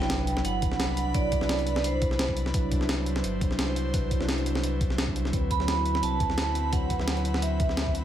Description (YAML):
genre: liquid drum and bass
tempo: 172 BPM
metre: 4/4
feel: swing 54% on 16ths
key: C lydian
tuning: A4 = 440 Hz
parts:
  - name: vibraphone with hard mallets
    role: melody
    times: 0.0-2.3, 5.5-7.9 s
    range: C5 to B5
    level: -31 LUFS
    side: right 6 dB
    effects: ping-pong delay
  - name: mellow tine electric piano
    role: accompaniment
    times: 0.0-8.0 s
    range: F#3 to B4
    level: -32 LUFS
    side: equal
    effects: analog chorus
  - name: airy breathy pad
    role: sustained chords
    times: 0.1-8.0 s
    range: F#3 to B5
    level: -36 LUFS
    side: left 1 dB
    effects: chorus, sidechain pumping
  - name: sub bass with octave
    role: bass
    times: 0.0-8.0 s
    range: G1 to D2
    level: -30 LUFS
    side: equal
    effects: none
  - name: breakbeat sampler-style drum kit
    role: drums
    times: 0.0-8.0 s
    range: hi-hat, snare drum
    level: -32 LUFS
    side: equal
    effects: small room ambience
  - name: impact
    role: sound effects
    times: 0.0-1.1 s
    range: none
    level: -39 LUFS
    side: left 1 dB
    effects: none
  - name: electronic kick drum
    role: drums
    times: 0.6-7.9 s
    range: none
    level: -29 LUFS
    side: equal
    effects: small room ambience
room: light reverb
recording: none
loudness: -24 LUFS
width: side -10 dB against mid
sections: 0.0-8.0 A section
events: impact 0.0-1.1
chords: 0.0 Cmaj9#11; 5.3 D13